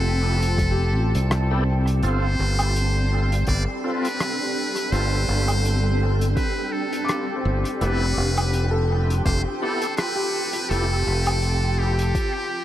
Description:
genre	ambient dub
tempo	83 BPM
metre	4/4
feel	swing 56% on 16ths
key	unclear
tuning	A4 = 439 Hz
part	trumpet with metal mute	melody	0.0-12.6 s	G4 to D5	-28 LUFS	equal	dub echo
part	granular cloud pad	sustained chords	0.0-12.6 s	G3 to A5	-29 LUFS	equal	built-in reverb
part	felt-muted upright piano	arpeggios	0.0-12.6 s	C4 to D6	-32 LUFS	left 2 dB	dub echo
part	modern bright fingered electric bass	bass	0.0-12.1 s	F1 to C2	-21 LUFS	equal	none
part	cloth-damped thuddy drum kit	drums	0.4-12.3 s	hi-hat, rim click, woodblock	-30 LUFS	equal	dub echo
part	electronic kick drum	drums	0.6-12.3 s	none	-25 LUFS	equal	overdrive
part	overdriven tonewheel organ	stabs	1.5-10.9 s	B3 to A4	-33 LUFS	equal	chorus vibrato, slow rotary speaker, dub echo
part	wind-like tuned noise texture	texture	3.1-12.6 s	G4 to G5	-32 LUFS	left 1 dB	built-in reverb
room	light reverb, studio reverb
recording	vinyl crackle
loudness	-20 LUFS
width	side -12 dB against mid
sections	0.0-12.6 A section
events	none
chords	0.0 Fmaj9#11; 2.0 G9sus4; 7.8 Fmaj9#11

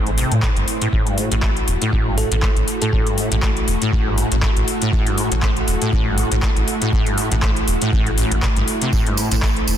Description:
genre	acid house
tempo	120 BPM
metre	4/4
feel	swing 56% on 16ths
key	unclear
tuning	A4 = 437 Hz
part	string machine, full ensemble	sustained chords	0.0-9.8 s	A3 to C5	-24 LUFS	right 1 dB	ensemble chorus, sidechain pumping
part	acid bass, saw	riff	0.0-9.5 s	A1 to A3	-23 LUFS	equal	tube saturation, ensemble chorus, sidechain pumping, digital delay
part	round analog bass	bass	0.0-9.8 s	E1 to A2	-22 LUFS	equal	tube saturation, sidechain pumping
part	electro analog drum machine	drums	0.1-9.8 s	handclaps, hi-hat	-25 LUFS	left 2 dB	none
part	electronic kick drum	drums	0.4-9.5 s	none	-20 LUFS	equal	none
part	thumb-piano-like synth pluck	melody	2.2-3.0 s	A4	-28 LUFS	right 2 dB	chorus, digital delay
part	tambourine	percussion	8.9-9.8 s	none	-27 LUFS	right 5 dB	none
room	light reverb, digital ambience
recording	dense, heavily limited modern master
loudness	-16 LUFS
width	side -10 dB against mid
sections	0.0-9.8 A section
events	none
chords	0.0 Am

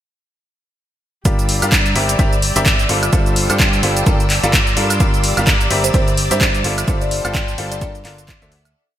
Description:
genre	piano house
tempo	128 BPM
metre	4/4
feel	swing 58% on 16ths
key	G dorian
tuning	A4 = 440 Hz
part	analog string pad	sustained chords	1.3-8.8 s	D5 to E6	-27 LUFS	right 1 dB	ensemble chorus, sidechain pumping
part	bright baby grand piano	riff	1.3-8.5 s	D3 to F5	-22 LUFS	left 1 dB	sidechain pumping, digital delay
part	fingered electric bass	bass	1.3-8.7 s	G1 to G2	-22 LUFS	equal	sidechain pumping
part	electronic kick drum	drums	1.3-8.4 s	none	-17 LUFS	equal	none
part	punchy analog drum machine	drums	1.3-8.7 s	handclaps, hi-hat, shaker, woodblock	-18 LUFS	equal	gated reverb
part	rich chamber string section	texture	1.3-8.8 s	C4 to D6	-26 LUFS	left 1 dB	sidechain pumping
part	buzzing kalimba	melody	5.8-7.9 s	C5 to D5	-25 LUFS	right 2 dB	none
room	light reverb, digital ambience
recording	bright 1980s-style digital production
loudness	-13 LUFS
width	side -12 dB against mid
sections	1.3-8.8 drop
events	drop 1.3-8.8; fade-out 6.3-8.8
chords	1.3 Gm7; 2.0 C9/G; 2.9 F6/G; 4.1 Bbmaj7/G; 5.0 Gm7; 5.7 C9/G; 6.6 F6/G; 7.8 Bbmaj7/G; 8.3 D9

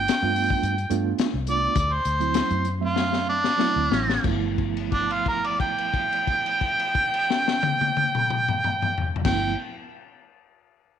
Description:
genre	straight-eighth soul blues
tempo	89-110 BPM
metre	4/4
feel	swing 54% on 16ths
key	G mixolydian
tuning	A4 = 440 Hz
part	mellow harmonica	melody	0.0-9.6 s	D4 to G5	-24 LUFS	right 1 dB	overdrive
part	mellow reed electric piano	accompaniment	0.0-9.6 s	F3 to E5	-29 LUFS	right 13 dB	fast tremolo
part	vintage muted fingered electric bass	bass	0.0-9.5 s	G1 to G2	-28 LUFS	left 1 dB	none
part	crunchy breakbeat drum kit	drums	0.1-9.4 s	crash cymbal, hi-hat, kick drum, snare drum, toms	-27 LUFS	left 6 dB	none
room	light reverb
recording	1960s-style stereo with parts hard left and right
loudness	-21 LUFS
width	side -9 dB against mid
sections	0.0-4.2 A section; 4.2-9.7 B section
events	slowing down 0.0-4.2; harmonica solo 0.0-4.2; drum fill 3.0-4.2; held note 4.2-9.2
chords	0.0 G9; 1.8 D9; 4.2 G13

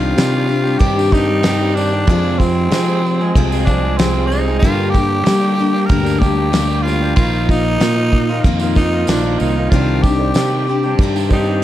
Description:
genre	folk rock and heartland rock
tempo	94 BPM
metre	4/4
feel	straight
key	C minor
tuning	A4 = 440 Hz
part	raspy tenor saxophone	melody	0.0-11.6 s	C4 to Bb4	-21 LUFS	equal	slapback echo
part	picked steel-string acoustic guitar	accompaniment	0.0-11.6 s	F2 to G4	-22 LUFS	left 7 dB	none
part	tonewheel organ	sustained chords	0.0-11.6 s	Eb3 to D5	-32 LUFS	equal	none
part	electric guitar through a small old amp	riff	0.0-11.6 s	F2 to Ab4	-20 LUFS	right 1 dB	none
part	fingered electric bass	bass	0.0-11.6 s	Bb1 to G3	-18 LUFS	equal	none
part	damped 70s drum kit	drums	0.2-11.5 s	crash cymbal, kick drum, snare drum	-18 LUFS	equal	none
part	tambourine	percussion	0.2-11.4 s	none	-36 LUFS	right 5 dB	none
part	dark upright piano	accompaniment	9.7-11.6 s	C5 to D5	-31 LUFS	right 7 dB	none
room	studio reverb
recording	dark, warm production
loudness	-13 LUFS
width	side -13 dB against mid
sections	0.0-11.6 A section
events	none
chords	0.0 Cmadd9; 2.1 Fm; 4.6 Gm; 7.2 Bbsus4; 9.7 Cmadd9

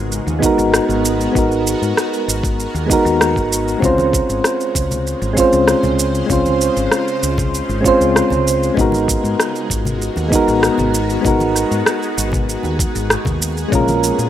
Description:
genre	sunset chillout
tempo	97 BPM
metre	4/4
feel	straight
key	unclear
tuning	A4 = 439 Hz
part	soft electric-piano-like synth keys	accompaniment	0.0-14.3 s	Ab3 to C5	-16 LUFS	equal	chorus, auto-pan, tape echo
part	shimmering ambient pad	sustained chords	0.0-14.3 s	Db3 to C5	-26 LUFS	equal	chorus, built-in reverb, phaser
part	woody fretless electric bass	bass	0.0-14.3 s	Ab1 to Bb2	-22 LUFS	equal	wide subtle chorus
part	electronic shaker and rim click	drums	0.1-14.3 s	none	-20 LUFS	right 1 dB	overdrive
part	electronic kick drum	drums	0.4-13.8 s	none	-21 LUFS	equal	overdrive
part	congas	percussion	3.8-14.0 s	none	-27 LUFS	left 2 dB	none
room	light reverb, digital ambience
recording	rough home demo mix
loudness	-14 LUFS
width	side -11 dB against mid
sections	0.0-13.7 A section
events	none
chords	0.0 Abm9; 3.8 Dbmaj7; 8.8 Abm9; 13.7 Bbm7

